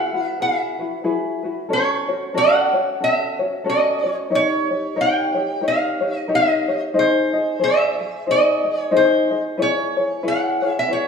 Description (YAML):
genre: hawaiian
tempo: 91 BPM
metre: 4/4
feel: swing 60% on 8ths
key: unclear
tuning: A4 = 444 Hz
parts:
  - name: lap resonator guitar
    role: melody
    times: 0.0-11.1 s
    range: B#4 to G5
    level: -20 LUFS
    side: right 1 dB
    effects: none
  - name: tenor ukulele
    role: accompaniment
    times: 0.0-11.1 s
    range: C#4 to D#5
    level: -20 LUFS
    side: left 2 dB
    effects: none
room: wet recital hall reverb, RT60 1.4 s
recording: small room ambience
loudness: -17 LUFS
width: side -6 dB against mid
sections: 0.0-11.1 A section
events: none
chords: 0.0 Eadd9; 1.7 F#m; 4.3 D#7; 6.9 G#; 9.6 C#m7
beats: 0.38 1.04 | 1.69 2.35 3.01 3.66 | 4.32 4.98 5.63 6.29 | 6.95 7.61 8.26 8.92 | 9.57 10.23 10.89